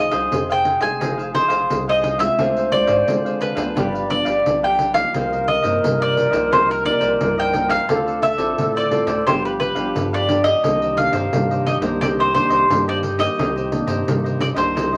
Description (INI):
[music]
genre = samba and choro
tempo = 87 BPM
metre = 4/4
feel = straight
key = C minor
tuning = A4 = 440 Hz
[part]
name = mandolin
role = melody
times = 0.0-15.0 s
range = Bb4 to Ab5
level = -22 LUFS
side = equal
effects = none
[part]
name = baroque flute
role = second line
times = 0.0-15.0 s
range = G4 to D5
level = -27 LUFS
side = equal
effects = none
[part]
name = nylon-string guitar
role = accompaniment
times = 0.0-15.0 s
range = G2 to C5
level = -28 LUFS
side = equal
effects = none
[part]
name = round analog bass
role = bass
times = 0.0-15.0 s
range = F1 to D3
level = -32 LUFS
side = equal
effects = none
[part]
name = cavaquinho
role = accompaniment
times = 0.1-15.0 s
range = D4 to F5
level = -32 LUFS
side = equal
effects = none
[part]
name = pandeiro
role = percussion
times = 0.1-14.9 s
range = none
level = -29 LUFS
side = equal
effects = none
[sound]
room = wet small room reverb, RT60 0.5 s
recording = vinyl crackle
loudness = -19 LUFS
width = mono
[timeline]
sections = 0.0-15.0 A section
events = none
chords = 0.0 Fm7; 2.4 Dm7b5; 3.8 G7; 5.1 Cm7; 7.9 Dm7; 9.3 G7; 10.6 Cm9